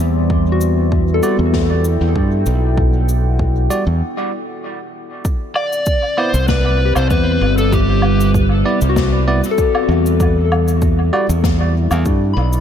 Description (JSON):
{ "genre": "ambient dub", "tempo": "97 BPM", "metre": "4/4", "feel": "swing 53% on 16ths", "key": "unclear", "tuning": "A4 = 440 Hz", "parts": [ { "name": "deep dark ambient pad", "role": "sustained chords", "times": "0.0-12.6 s", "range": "G3 to G5", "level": "-22 LUFS", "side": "equal", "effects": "chorus, built-in reverb" }, { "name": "soft synth bell", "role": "arpeggios", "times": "0.0-12.6 s", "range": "F#4 to C6", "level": "-23 LUFS", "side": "left 6 dB", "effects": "chorus, phaser, dub echo" }, { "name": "modern bright fingered electric bass", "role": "bass", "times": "0.0-12.6 s", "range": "G1 to G2", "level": "-15 LUFS", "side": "equal", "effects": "none" }, { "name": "electronic kick drum", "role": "drums", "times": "0.3-12.2 s", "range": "none", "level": "-18 LUFS", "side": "equal", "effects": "none" }, { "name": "cabasa, snare drum and woodblock", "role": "drums", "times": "0.6-12.6 s", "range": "none", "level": "-25 LUFS", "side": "left 2 dB", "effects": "dub echo" }, { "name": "barky tine electric piano", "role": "stabs", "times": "1.2-11.3 s", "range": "G3 to D5", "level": "-24 LUFS", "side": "right 3 dB", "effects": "dub echo" }, { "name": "overdriven slide guitar", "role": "melody", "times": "5.6-8.3 s", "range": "G4 to D5", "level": "-22 LUFS", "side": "left 1 dB", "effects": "dub echo" } ], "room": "light reverb, studio reverb", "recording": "none", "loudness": "-13 LUFS", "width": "side -9 dB against mid", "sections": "0.0-5.2 A section; 5.2-12.6 B section", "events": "break 4.0-5.2", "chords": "0.3 Em9; 5.2 C; 10.2 Em7", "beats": "| 0.30 0.92 1.54 2.16 | 2.77 3.39 4.01 4.63 | 5.25 5.87 6.49 7.11 | 7.72 8.34 8.96 9.58 | 10.20 10.82 11.44 12.05" }